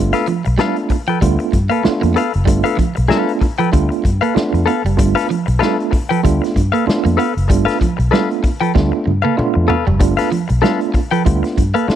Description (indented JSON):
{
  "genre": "funk",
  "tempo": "96 BPM",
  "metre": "4/4",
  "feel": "swing 56% on 16ths",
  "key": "G mixolydian",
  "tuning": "A4 = 435 Hz",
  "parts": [
    { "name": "electric guitar at the edge of break-up", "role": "riff", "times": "0.0-11.9 s", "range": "F3 to B3", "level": "-20 LUFS", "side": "right 7 dB", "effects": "none" },
    { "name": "tine electric piano", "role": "stabs", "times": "0.0-12.0 s", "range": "A3 to F4", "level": "-19 LUFS", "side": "right 5 dB", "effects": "overdrive, fast stereo tremolo" },
    { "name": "vintage muted fingered electric bass", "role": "bass", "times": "0.0-11.9 s", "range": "F#1 to G2", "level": "-16 LUFS", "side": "equal", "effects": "none" },
    { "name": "direct-recorded clean electric guitar", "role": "accompaniment", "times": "0.1-11.9 s", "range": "A4 to G5", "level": "-20 LUFS", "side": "left 10 dB", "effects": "spring reverb" },
    { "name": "raw garage drum kit", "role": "drums", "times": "0.1-12.0 s", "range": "hi-hat, kick drum, snare drum, toms", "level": "-19 LUFS", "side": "left 1 dB", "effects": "none" }
  ],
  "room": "little or no reverb",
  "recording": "dry, close 1970s-style studio recording",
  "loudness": "-13 LUFS",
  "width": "side -10 dB against mid",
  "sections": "0.0-12.0 A section",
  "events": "drum fill 8.8-10.0",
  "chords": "0.0 G9"
}